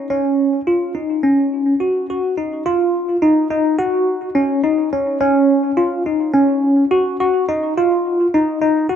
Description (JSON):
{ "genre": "progressive instrumental, progressive", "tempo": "212 BPM (eighths)", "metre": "9/8", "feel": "straight", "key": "Eb minor", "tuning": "A4 = 440 Hz", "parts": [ { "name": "bell-like tine electric piano", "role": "solo", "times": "0.0-9.0 s", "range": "Db4 to Gb4", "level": "-14 LUFS", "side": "equal", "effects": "phaser, tape echo" } ], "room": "light reverb", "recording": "rough home demo mix", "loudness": "-14 LUFS", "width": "side -8 dB against mid", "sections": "0.0-2.7 A section; 2.7-9.0 B section", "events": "none", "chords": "none", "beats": "| 0.11 0.39 0.67 0.96 1.24 1.53 1.81 2.09 2.38 | 2.66 2.94 3.23 3.51 3.79 4.08 4.36 4.64 4.93 | 5.21 5.50 5.78 6.06 6.34 6.63 6.91 7.20 7.48 | 7.76 8.04 8.33 8.61 8.89" }